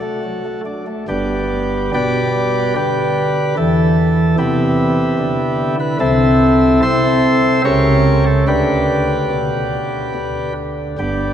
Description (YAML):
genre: classical, chorale-style piece for pipe organ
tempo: 72 BPM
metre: 3/4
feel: rubato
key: G major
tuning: A4 = 438 Hz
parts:
  - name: chamber organ, principal chorus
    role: solo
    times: 0.0-11.3 s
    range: G1 to E5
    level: -14 LUFS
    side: equal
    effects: none
room: wet cathedral reverb, RT60 4.8 s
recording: heard from further back in the room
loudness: -13 LUFS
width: side -9 dB against mid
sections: 0.0-1.1 A section; 1.1-11.3 B section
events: none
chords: 0.0 D; 1.1 G; 3.6 Em; 6.0 Am/C; 7.6 A7b9/C#; 8.5 G/D